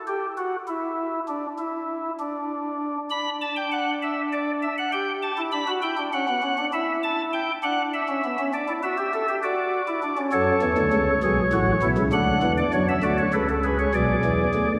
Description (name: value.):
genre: classical, baroque-style 4-part fugue for pipe organ.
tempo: 66 BPM (dotted quarters).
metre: 12/8.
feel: straight.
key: B minor.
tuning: A4 = 440 Hz.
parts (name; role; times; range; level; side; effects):
pipe organ, flutes; solo; 0.1-14.7 s; A1 to B5; -24 LUFS; equal; none.
room: wet church reverb, RT60 3.0 s.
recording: none.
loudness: -24 LUFS.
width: mono.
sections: 0.0-3.1 A section; 3.1-14.8 B section.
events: none.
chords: 0.0 N.C.; 3.1 Bm/D; 4.9 G; 8.5 Em13; 10.3 F#m; 12.1 D; 13.9 Bm.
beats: 0.38 1.28 2.19 | 3.10 4.01 4.92 5.83 | 6.73 7.63 8.53 9.43 | 10.33 11.23 12.13 13.04 | 13.94.